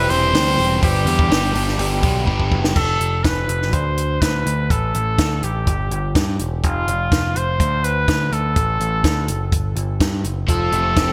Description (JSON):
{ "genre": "indie rock", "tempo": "124 BPM", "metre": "4/4", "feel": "straight", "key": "unclear", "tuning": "A4 = 440 Hz", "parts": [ { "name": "warm trumpet", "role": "melody", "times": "0.0-11.1 s", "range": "F4 to C5", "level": "-24 LUFS", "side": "equal", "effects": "delay" }, { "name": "overdriven electric guitar", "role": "riff", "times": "0.0-2.8, 10.5-11.1 s", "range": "G2 to G4", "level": "-24 LUFS", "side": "equal", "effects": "lush chorus" }, { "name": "growling picked electric bass", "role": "bass", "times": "0.0-11.1 s", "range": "E1 to G2", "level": "-24 LUFS", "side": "equal", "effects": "overdrive" }, { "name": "compact cocktail drum kit", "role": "drums", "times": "0.1-11.1 s", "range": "crash cymbal, hi-hat, kick drum, snare drum", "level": "-23 LUFS", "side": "equal", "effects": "gated reverb" } ], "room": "light reverb, studio reverb", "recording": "bright 1980s-style digital production", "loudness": "-19 LUFS", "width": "mono", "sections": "0.0-2.8 A section; 2.8-11.1 B section", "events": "drum fill 2.3-2.8", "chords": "0.0 C/E; 0.8 G; 2.8 F; 3.7 Bm/D; 4.7 A7sus4; 5.7 Em; 6.6 F5; 7.6 Bm7/D; 8.6 F#m; 9.5 N.C.; 10.5 F", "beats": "0.34 | 0.83 1.31 1.79 2.28 | 2.76 3.24 3.73 4.21 | 4.70 5.18 5.67 6.15 | 6.63 7.12 7.60 8.08 | 8.56 9.04 9.52 10.00 | 10.48 10.96" }